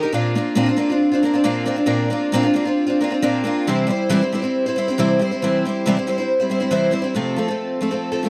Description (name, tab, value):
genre	rock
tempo	138 BPM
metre	4/4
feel	straight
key	F major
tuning	A4 = 440 Hz
part	picked twelve-string acoustic guitar	solo	0.0-8.3 s	F2 to C5	-20 LUFS	equal	none
room	little or no reverb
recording	dry, close 1970s-style studio recording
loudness	-20 LUFS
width	mono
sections	0.0-7.2 A section; 7.2-8.3 B section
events	none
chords	0.2 Bbadd9; 3.7 C; 7.2 F